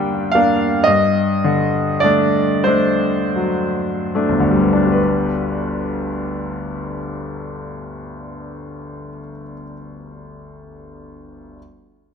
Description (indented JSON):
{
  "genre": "classical, romantic nocturne for solo piano",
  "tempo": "24-39 BPM (dotted quarters)",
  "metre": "6/8",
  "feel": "rubato",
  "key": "unclear",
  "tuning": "A4 = 439 Hz",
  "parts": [
    { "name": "bright grand piano", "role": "solo", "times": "0.0-11.6 s", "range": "G1 to G5", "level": "-17 LUFS", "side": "equal", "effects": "none" }
  ],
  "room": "wet recital hall reverb, RT60 1.6 s",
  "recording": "close, detailed microphones",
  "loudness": "-15 LUFS",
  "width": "side -6 dB against mid",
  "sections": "0.0-5.0 A section; 5.0-9.4 B section",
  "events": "slowing down 0.0-5.0",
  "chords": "0.0 Gm; 0.9 D7/G; 5.0 G",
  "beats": "| 0.87 2.67 | 4.96 7.23"
}